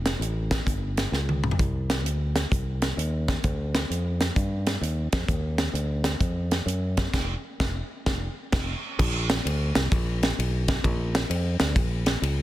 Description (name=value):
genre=uptempo gospel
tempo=130 BPM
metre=4/4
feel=swing 65% on 8ths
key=Bb major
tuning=A4 = 440 Hz
part: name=fingered electric bass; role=bass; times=0.0-12.4 s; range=F1 to G2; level=-27 LUFS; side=equal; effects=none
part: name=tight funk drum kit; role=drums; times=0.1-12.4 s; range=crash cymbal, hi-hat, kick drum, ride cymbal, snare drum, toms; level=-26 LUFS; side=equal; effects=none
room=light reverb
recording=dense, heavily limited modern master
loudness=-24 LUFS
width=side -14 dB against mid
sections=0.0-9.0 A section; 9.0-12.4 B section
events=drum fill 1.1-1.6; band accent 7.1-9.0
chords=none